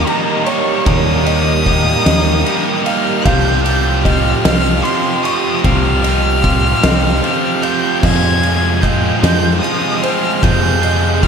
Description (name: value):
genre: post-rock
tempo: 50 BPM (dotted quarters)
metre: 6/8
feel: straight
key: F minor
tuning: A4 = 439 Hz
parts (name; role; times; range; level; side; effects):
- dark violin; melody; 0.0-11.3 s; Bb5 to Ab6; -20 LUFS; equal; diffuse ambient delay
- glassy FM pad; sustained chords; 0.0-11.3 s; C4 to Bb5; -25 LUFS; equal; ensemble chorus, built-in reverb
- felt-muted upright piano; arpeggios; 0.0-11.3 s; C5 to Db6; -25 LUFS; right 4 dB; lush chorus, diffuse ambient delay
- cranked stack guitar; riff; 0.0-11.3 s; F2 to Ab4; -19 LUFS; right 12 dB; overdrive
- distorted electric guitar; riff; 0.0-11.3 s; F2 to G4; -20 LUFS; left 11 dB; overdrive
- picked electric bass; bass; 0.0-11.3 s; C2 to F2; -16 LUFS; equal; none
- oversized low-tuned drum kit; drums; 0.1-11.3 s; crash cymbal, kick drum, ride cymbal, snare drum; -18 LUFS; equal; none
room: moderate plate reverb, RT60 2.8 s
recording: dreamy mix soaked in reverb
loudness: -12 LUFS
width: side -6 dB against mid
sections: 0.0-11.3 A section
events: none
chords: 0.0 Eb; 3.3 Csus4; 8.0 Fm7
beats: | 0.87 2.06 | 3.26 4.45 | 5.65 6.84 | 8.04 9.23 | 10.43